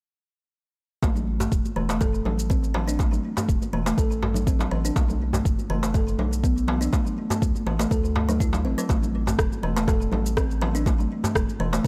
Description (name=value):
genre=afro house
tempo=122 BPM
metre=4/4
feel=swing 53% on 16ths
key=A dorian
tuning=A4 = 440 Hz
part: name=kalimba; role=arpeggios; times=1.0-11.9 s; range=E3 to A4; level=-30 LUFS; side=equal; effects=sidechain pumping, digital delay
part: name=round analog bass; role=bass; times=1.0-11.9 s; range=E1 to D2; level=-30 LUFS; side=equal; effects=sidechain pumping
part: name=electronic kick drum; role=drums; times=1.0-11.9 s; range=none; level=-26 LUFS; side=equal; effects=none
part: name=electronic shaker and rim click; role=drums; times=1.0-11.8 s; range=none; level=-35 LUFS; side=equal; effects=overdrive
part: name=congas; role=percussion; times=1.0-11.7 s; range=none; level=-36 LUFS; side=equal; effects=none
part: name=darbuka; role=percussion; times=1.0-11.8 s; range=none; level=-34 LUFS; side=equal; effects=none
room=light reverb, small room ambience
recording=none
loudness=-24 LUFS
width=mono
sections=1.0-11.9 A section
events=none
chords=1.0 A5; 5.0 B7(no3); 6.9 D5; 8.9 A5